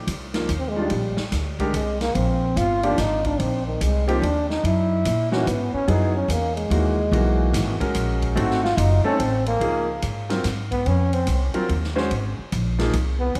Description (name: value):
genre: modal jazz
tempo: 145 BPM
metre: 3/4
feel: swing 65% on 8ths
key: Db major from 9.6 s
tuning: A4 = 440 Hz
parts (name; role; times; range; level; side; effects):
- upright bass; bass; 0.1-13.4 s; Gb1 to Bb2; -25 LUFS; equal; none
- swinging big-band drum kit; drums; 0.1-13.4 s; hi-hat, kick drum, ride cymbal, snare drum; -35 LUFS; equal; none
- clear grand piano; accompaniment; 0.3-12.9 s; Eb3 to C5; -29 LUFS; equal; none
- clear trombone; second line; 0.6-13.4 s; Eb3 to Gb4; -27 LUFS; equal; none
room: wet echo chamber reverb, RT60 2.0 s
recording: none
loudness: -22 LUFS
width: mono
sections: 0.0-9.6 A section; 9.6-13.4 A section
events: trombone solo 0.0-13.4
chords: 0.0 Bb13sus4; 4.6 Gb13sus4; 8.4 Ab7b9; 9.6 Dbmaj9